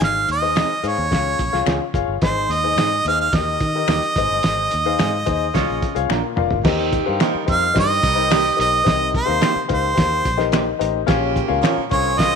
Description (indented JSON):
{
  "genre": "uptempo 1960s-style soul",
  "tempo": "108 BPM",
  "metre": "4/4",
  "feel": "straight",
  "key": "Eb mixolydian",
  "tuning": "A4 = 439 Hz",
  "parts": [
    { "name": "bright harmonica", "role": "melody", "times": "0.0-12.4 s", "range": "C5 to F5", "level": "-20 LUFS", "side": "right 3 dB", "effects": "slapback echo" },
    { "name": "warm grand piano", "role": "accompaniment", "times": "0.0-12.4 s", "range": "Ab2 to F5", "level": "-23 LUFS", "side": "left 13 dB", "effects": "none" },
    { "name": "fingered electric bass", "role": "bass", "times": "0.0-12.4 s", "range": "F1 to Eb3", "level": "-26 LUFS", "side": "right 1 dB", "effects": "none" },
    { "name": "cloth-damped thuddy drum kit", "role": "drums", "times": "0.0-12.3 s", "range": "crash cymbal, hi-hat, kick drum, snare drum, toms", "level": "-22 LUFS", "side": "right 1 dB", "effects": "none" },
    { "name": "electric guitar through a small old amp", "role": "stabs", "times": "0.6-11.7 s", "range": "G3 to Db5", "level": "-28 LUFS", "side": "right 12 dB", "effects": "none" },
    { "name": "finger snaps", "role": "percussion", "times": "0.6-11.8 s", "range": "none", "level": "-30 LUFS", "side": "left 13 dB", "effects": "none" },
    { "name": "clear saxophone section", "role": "second line", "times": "5.5-12.4 s", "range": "Db3 to Db5", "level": "-25 LUFS", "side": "right 12 dB", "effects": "slapback echo" }
  ],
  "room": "light reverb, studio ambience",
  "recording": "1960s-style stereo with parts hard left and right",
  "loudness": "-16 LUFS",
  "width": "side -6 dB against mid",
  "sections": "0.0-6.7 A section; 6.7-12.4 B section",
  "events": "band accent 4.4-6.7; drum fill 6.1-6.7; grand piano fill 10.3-11.1",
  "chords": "0.0 Ab; 1.1 Db; 2.2 Ab; 3.3 Eb; 4.2 Ab; 5.5 Db; 6.1 Bb; 6.7 Eb6; 8.9 Cm7; 11.1 Bbm"
}